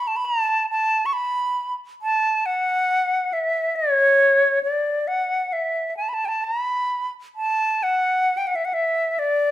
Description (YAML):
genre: celtic folk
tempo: 45 BPM (dotted quarters)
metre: 6/8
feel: rubato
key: unclear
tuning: A4 = 440 Hz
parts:
  - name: bright wooden flute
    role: solo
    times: 0.0-9.5 s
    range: C#5 to C#6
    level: -19 LUFS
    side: equal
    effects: none
room: moderate recital hall reverb, RT60 1.6 s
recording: minimal, uncompressed stereo recording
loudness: -19 LUFS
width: side -13 dB against mid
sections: 0.0-7.4 A section; 7.4-9.5 A section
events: none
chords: none